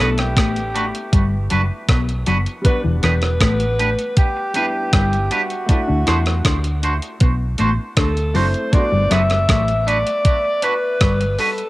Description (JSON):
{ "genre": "lovers rock reggae", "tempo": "79 BPM", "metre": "4/4", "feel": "straight", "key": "G major", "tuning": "A4 = 440 Hz", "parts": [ { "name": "breathy alto saxophone", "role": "melody", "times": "0.0-11.7 s", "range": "F#4 to E5", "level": "-22 LUFS", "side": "equal", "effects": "cassette tape, tape echo" }, { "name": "clear grand piano", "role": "accompaniment", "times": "0.0-11.7 s", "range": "G3 to F#5", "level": "-30 LUFS", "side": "equal", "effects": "cassette tape, analog delay" }, { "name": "mellow electric guitar", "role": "riff", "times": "0.0-11.2 s", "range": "E3 to E4", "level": "-24 LUFS", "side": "left 4 dB", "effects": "phaser, cassette tape, analog delay" }, { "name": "twangy electric guitar", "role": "stabs", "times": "0.0-11.5 s", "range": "D4 to C5", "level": "-24 LUFS", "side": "right 3 dB", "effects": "cassette tape, analog delay" }, { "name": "vintage muted fingered electric bass", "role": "bass", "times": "0.0-11.4 s", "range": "E1 to E2", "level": "-20 LUFS", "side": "equal", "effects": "none" }, { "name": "clean 12-bit digital drum machine", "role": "drums", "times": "0.2-11.7 s", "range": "hi-hat, kick drum, rim click", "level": "-18 LUFS", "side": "equal", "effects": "none" } ], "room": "moderate spring reverb, RT60 2.6 s", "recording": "home recording on cassette", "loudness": "-15 LUFS", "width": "side -18 dB against mid", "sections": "0.0-11.7 A section", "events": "none", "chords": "0.0 Gmaj7; 2.6 Em7; 5.7 D7; 8.7 Gmaj7" }